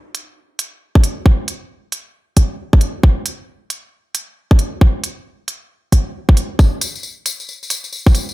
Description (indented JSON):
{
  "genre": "UK garage",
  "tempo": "135 BPM",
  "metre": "4/4",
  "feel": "swing 64% on 16ths",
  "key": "none",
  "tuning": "none",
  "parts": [
    { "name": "electronic hi-hat", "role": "drums", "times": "0.1-8.3 s", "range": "none", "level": "-23 LUFS", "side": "right 3 dB", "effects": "none" },
    { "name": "electronic kick drum", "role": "drums", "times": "1.0-8.1 s", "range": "none", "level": "-12 LUFS", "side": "equal", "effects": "none" },
    { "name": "tambourine", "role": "percussion", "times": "6.6-8.3 s", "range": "none", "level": "-24 LUFS", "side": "left 4 dB", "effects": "none" }
  ],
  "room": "little or no reverb",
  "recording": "none",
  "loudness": "-15 LUFS",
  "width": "side -19 dB against mid",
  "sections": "0.0-8.3 A section",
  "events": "none",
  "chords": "none",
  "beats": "0.37 0.81 | 1.26 1.70 2.15 2.59 | 3.04 3.48 3.92 4.37 | 4.81 5.26 5.70 6.15 | 6.59 7.04 7.48 7.92"
}